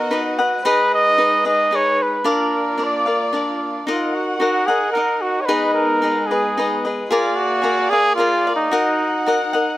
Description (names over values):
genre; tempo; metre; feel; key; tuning
mexican folk, mariachi; 111 BPM; 3/4; straight; Eb minor; A4 = 437 Hz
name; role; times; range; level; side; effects
mellow trumpet; melody; 0.0-9.8 s; Eb4 to Eb5; -18 LUFS; right 1 dB; none
cavaquinho; accompaniment; 0.0-9.8 s; D4 to F#5; -20 LUFS; left 2 dB; slapback echo
dark chamber violin section; sustained chords; 0.0-9.8 s; Ab3 to Gb5; -27 LUFS; right 1 dB; none
room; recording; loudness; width
little or no reverb; recorded outdoors, with no room sound; -16 LUFS; side -15 dB against mid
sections
0.0-9.8 A section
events
none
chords
0.0 B; 0.6 Abm; 2.2 Bb; 3.9 Ebm; 5.5 Abm; 7.1 Bb7; 8.7 Ebm